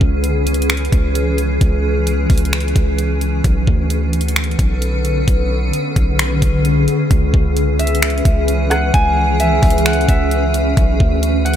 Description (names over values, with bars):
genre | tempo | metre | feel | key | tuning
hip hop, atmospheric cloud-rap | 131 BPM | 4/4 | half-time | unclear | A4 = 443 Hz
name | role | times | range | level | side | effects
granular cloud pad | sustained chords | 0.0-11.6 s | D3 to B4 | -19 LUFS | left 1 dB | built-in reverb, sidechain pumping
long sustained 808-style bass | bass | 0.0-11.6 s | B1 to D2 | -17 LUFS | equal | none
trap drum kit | drums | 0.0-11.6 s | finger snaps, hi-hat, kick drum, rim click | -16 LUFS | equal | none
Celtic harp | melody | 7.8-11.6 s | E5 to G#5 | -19 LUFS | right 1 dB | ping-pong delay
room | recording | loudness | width
digital ambience | none | -13 LUFS | side -10 dB against mid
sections
0.0-7.1 A section; 7.1-11.6 B section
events
none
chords
0.0 C#m7; 3.4 Bm9; 7.1 C#m7; 10.8 Bm9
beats
0.24 0.70 1.15 | 1.61 2.07 2.53 2.99 | 3.44 3.90 4.36 4.82 | 5.28 5.73 6.19 6.65 | 7.11 7.57 8.02 8.48 | 8.94 9.40 9.86 10.31 | 10.77 11.23